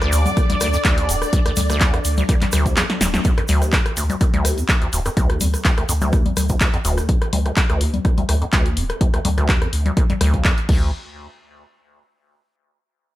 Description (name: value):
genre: acid house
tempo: 125 BPM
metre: 4/4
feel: swing 54% on 16ths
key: D phrygian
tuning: A4 = 440 Hz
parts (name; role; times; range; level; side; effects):
- string machine, full ensemble; sustained chords; 0.0-3.2 s; D4 to D5; -25 LUFS; equal; ensemble chorus, sidechain pumping
- acid bass, square; riff; 0.0-10.9 s; D2 to F2; -23 LUFS; equal; lush chorus, vintage 12-bit sampler grit, sidechain pumping, tape echo
- punchy analog drum machine; drums; 0.0-10.8 s; congas, crash cymbal, handclaps, hi-hat, rim click, snare drum; -22 LUFS; left 2 dB; none
- warm sub bass; bass; 0.1-10.9 s; D1 to D2; -21 LUFS; equal; tube saturation, sidechain pumping
- egg shaker; percussion; 0.1-7.1 s; none; -29 LUFS; right 3 dB; none
- electronic kick drum; drums; 0.4-10.8 s; none; -18 LUFS; equal; none
room: digital ambience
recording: none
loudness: -16 LUFS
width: side -15 dB against mid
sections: 0.0-3.2 A section; 3.2-10.9 B section; 10.9-12.8 C section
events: drop 0.0-3.2; kick drops out 2.8-3.2; drum fill 2.8-3.2; band accent 3.1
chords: 0.0 D5; 3.2 Dm; 10.7 N.C.